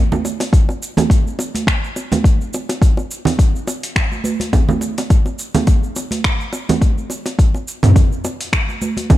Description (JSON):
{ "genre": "downtempo", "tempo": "105 BPM", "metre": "4/4", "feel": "swing 56% on 16ths", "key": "none", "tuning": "none", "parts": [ { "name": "deep house drum kit", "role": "drums", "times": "0.1-9.2 s", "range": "cabasa, finger snaps, hi-hat, toms", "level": "-21 LUFS", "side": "equal", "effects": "overdrive" }, { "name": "congas and bongos", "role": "percussion", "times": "0.1-9.2 s", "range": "none", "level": "-20 LUFS", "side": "right 3 dB", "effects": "none" }, { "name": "electronic kick drum", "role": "drums", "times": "0.5-9.2 s", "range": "none", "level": "-13 LUFS", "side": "left 1 dB", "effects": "overdrive" } ], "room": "little or no reverb", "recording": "none", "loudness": "-14 LUFS", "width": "side -15 dB against mid", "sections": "0.0-9.2 A section", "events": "none", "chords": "none" }